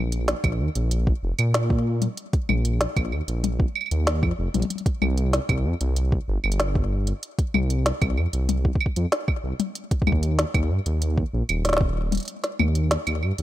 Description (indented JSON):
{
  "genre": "IDM",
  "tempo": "95 BPM",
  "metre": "4/4",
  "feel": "straight",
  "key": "unclear",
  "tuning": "A4 = 439 Hz",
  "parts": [
    { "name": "dark detuned saw bass", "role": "bass", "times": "0.0-13.4 s", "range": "Eb1 to Bb2", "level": "-23 LUFS", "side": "equal", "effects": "none" },
    { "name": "organic electronic drum kit", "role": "drums", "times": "0.1-13.4 s", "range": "claves, hi-hat, snare drum, toms", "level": "-26 LUFS", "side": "left 1 dB", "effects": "ping-pong delay" },
    { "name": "electronic kick drum", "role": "drums", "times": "0.4-11.9 s", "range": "none", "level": "-23 LUFS", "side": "equal", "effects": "none" }
  ],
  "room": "little or no reverb",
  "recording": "none",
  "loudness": "-21 LUFS",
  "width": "side -14 dB against mid",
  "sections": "0.0-13.4 A section",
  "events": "kick drops out 12.3-13.4",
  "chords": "none"
}